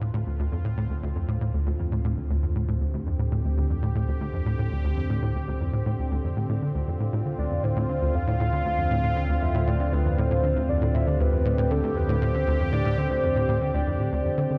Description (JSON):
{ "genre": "ambient, sequencer-driven space music", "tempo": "118 BPM", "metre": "4/4", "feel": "straight", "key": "D minor", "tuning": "A4 = 439 Hz", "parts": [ { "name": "sweeping resonant pad", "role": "sustained chords", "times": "0.0-14.6 s", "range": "D3 to G4", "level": "-33 LUFS", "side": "equal", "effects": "chorus" }, { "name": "tight sequencer bass", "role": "riff", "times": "0.0-14.6 s", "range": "D2 to D3", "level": "-28 LUFS", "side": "equal", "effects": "ensemble chorus, analog delay" }, { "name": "round analog bass", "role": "bass", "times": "0.0-14.6 s", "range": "D2", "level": "-31 LUFS", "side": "equal", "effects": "none" }, { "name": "soft octave-layered synth lead", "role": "melody", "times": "7.4-14.5 s", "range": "A4 to F5", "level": "-31 LUFS", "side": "equal", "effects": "chorus, phaser, analog delay" } ], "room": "wet huge ambient reverb, RT60 8.1 s", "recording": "dark, warm production", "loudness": "-25 LUFS", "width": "mono", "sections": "0.0-14.6 A section", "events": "fade-in on analog synth pad 0.0-14.6", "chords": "0.0 Dm7", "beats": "0.01 | 0.52 1.03 1.54 2.05 | 2.56 3.06 3.57 4.08 | 4.59 5.10 5.61 6.11 | 6.62 7.13 7.64 8.15 | 8.66 9.16 9.67 10.18 | 10.69 11.20 11.71 12.22 | 12.72 13.23 13.74 14.25" }